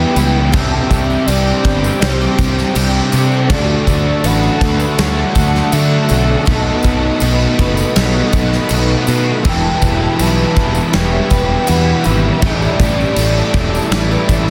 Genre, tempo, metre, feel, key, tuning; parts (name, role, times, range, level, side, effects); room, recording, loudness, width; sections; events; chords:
rock, shoegaze and dream pop; 81 BPM; 4/4; straight; D major; A4 = 439 Hz
pure breathy sine lead; melody; 0.0-14.5 s; C5 to A5; -25 LUFS; equal; chorus, phaser, analog delay
string machine, full ensemble; sustained chords; 0.0-14.5 s; G4 to D#6; -28 LUFS; equal
picked twelve-string acoustic guitar; arpeggios; 0.0-14.5 s; G4 to C#5; -30 LUFS; equal
distorted electric guitar; riff; 0.0-14.5 s; E2 to D4; -23 LUFS; equal; distortion
electric guitar through a small old amp; riff; 0.0-14.5 s; A2 to B4; -25 LUFS; equal; reverse reverb
overdriven electric guitar; riff; 0.0-14.5 s; E2 to G4; -24 LUFS; equal; ensemble chorus
fuzz fingered electric bass; bass; 0.0-14.5 s; E1 to D3; -18 LUFS; equal; overdrive
huge arena drum kit; drums; 0.2-14.5 s; crash cymbal, kick drum, snare drum; -20 LUFS; equal
tambourine; percussion; 0.2-14.5 s; -33 LUFS; equal
small room reverb; dense, heavily limited modern master; -14 LUFS; mono
0.0-14.5 A section
0.0 Em7; 0.5 Csus2; 3.5 Dmaj7; 6.5 B7; 9.5 Em7; 12.4 A7sus4